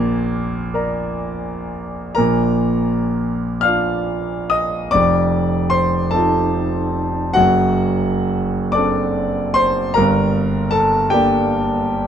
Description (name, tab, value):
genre	classical, romantic nocturne for solo piano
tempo	39-52 BPM (dotted quarters)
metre	6/8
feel	rubato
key	Bb major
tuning	A4 = 441 Hz
part	warm concert grand piano	solo	0.0-12.1 s	F1 to F6	-16 LUFS	equal	none
room	light reverb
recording	dark, warm production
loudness	-16 LUFS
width	side -8 dB against mid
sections	0.0-2.2 A section; 2.2-12.1 A section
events	none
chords	0.0 Bb; 4.9 F7; 7.4 D7/F#; 10.0 Gm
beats	0.73 | 2.17 3.64 | 4.94 6.14 | 7.36 8.74 | 9.97 11.13